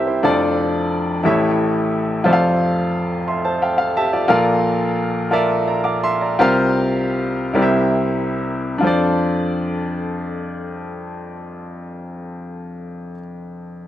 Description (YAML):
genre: gospel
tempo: 44-59 BPM (dotted quarters)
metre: 6/8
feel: straight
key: F major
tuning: A4 = 440 Hz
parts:
  - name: clear baby grand piano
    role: solo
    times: 0.0-13.9 s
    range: F1 to D6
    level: -17 LUFS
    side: equal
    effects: slapback echo
room: little or no reverb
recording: recorded outdoors, with no room sound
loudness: -16 LUFS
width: side -12 dB against mid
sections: 0.0-8.8 A section; 8.8-13.9 B section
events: grand piano fill 3.3-4.3; slowing down 4.3-8.8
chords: 0.2 F6; 1.2 A7; 2.3 Dm7/F; 4.3 Bbmaj7; 6.4 C7sus4; 7.5 C7; 8.8 F6